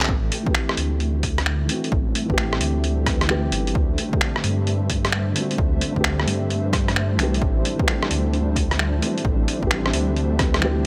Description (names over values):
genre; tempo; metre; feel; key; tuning
future garage; 131 BPM; 4/4; swing 65% on 16ths; A dorian; A4 = 439 Hz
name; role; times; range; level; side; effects
felt-muted upright piano; accompaniment; 0.0-10.9 s; D3 to B4; -30 LUFS; equal; sidechain pumping, digital delay
granular cloud pad; sustained chords; 0.0-10.9 s; G3 to E5; -31 LUFS; equal; built-in reverb, sidechain pumping
dark detuned saw bass; bass; 0.0-10.8 s; G1 to G2; -26 LUFS; equal; sidechain pumping
lo-fi sampler-style drum kit; drums; 0.0-10.7 s; finger snaps, handclaps, hi-hat, rim click; -27 LUFS; equal; none
electronic kick drum; drums; 0.1-10.5 s; none; -26 LUFS; equal; overdrive
room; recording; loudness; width
light reverb; none; -22 LUFS; mono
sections
0.1-10.9 A section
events
none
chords
0.1 Am7; 3.8 D7sus4; 7.4 Am7